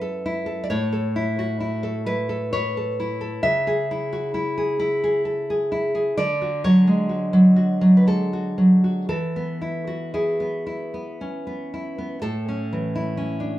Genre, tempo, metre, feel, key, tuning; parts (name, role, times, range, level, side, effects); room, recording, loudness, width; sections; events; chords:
romantic piece for solo classical guitar; 56-67 BPM; 3/4; rubato; A major; A4 = 440 Hz
nylon-string guitar; solo; 0.0-13.6 s; F#2 to F#5; -20 LUFS; equal
wet studio reverb, RT60 0.7 s; heard from further back in the room; -20 LUFS; side -14 dB against mid
0.0-12.2 A section; 12.2-13.6 B section
0.0 F#m7; 0.7 A; 3.4 C#m; 6.2 Dmaj7; 9.1 E; 12.2 A